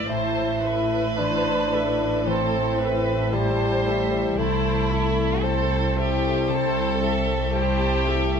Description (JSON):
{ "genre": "classical, slow romantic movement for symphony orchestra", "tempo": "57 BPM", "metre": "4/4", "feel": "rubato", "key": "A minor", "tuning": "A4 = 445 Hz", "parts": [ { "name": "muted chamber violin section", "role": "melody", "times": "0.0-8.4 s", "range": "E5 to A5", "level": "-33 LUFS", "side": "left 1 dB", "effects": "none" }, { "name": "muted chamber violin section", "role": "second line", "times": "0.0-8.4 s", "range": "E4 to D5", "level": "-28 LUFS", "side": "left 1 dB", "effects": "none" }, { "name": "muted chamber viola section", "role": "accompaniment", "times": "0.0-8.4 s", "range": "E4 to E5", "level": "-32 LUFS", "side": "equal", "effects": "none" }, { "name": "concert harp", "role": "arpeggios", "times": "0.0-8.4 s", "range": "G#2 to E4", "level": "-29 LUFS", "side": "left 15 dB", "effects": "none" }, { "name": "muted chamber cello section", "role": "bass", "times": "0.0-8.4 s", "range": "C2 to A2", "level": "-29 LUFS", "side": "right 1 dB", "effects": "none" }, { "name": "muted studio double bass section", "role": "bass", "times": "0.0-8.4 s", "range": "A1 to C2", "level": "-28 LUFS", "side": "right 3 dB", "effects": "none" }, { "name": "mellow bassoon", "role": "accompaniment", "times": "0.1-8.3 s", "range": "G3 to E4", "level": "-25 LUFS", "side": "right 2 dB", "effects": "none" } ], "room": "light reverb", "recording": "close, detailed microphones", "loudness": "-20 LUFS", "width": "side -6 dB against mid", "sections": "0.0-8.4 A section", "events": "none", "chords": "0.1 Am; 4.4 Am/C", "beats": "| 0.10 1.19 2.28 3.34 | 4.39 5.43 6.49 7.55" }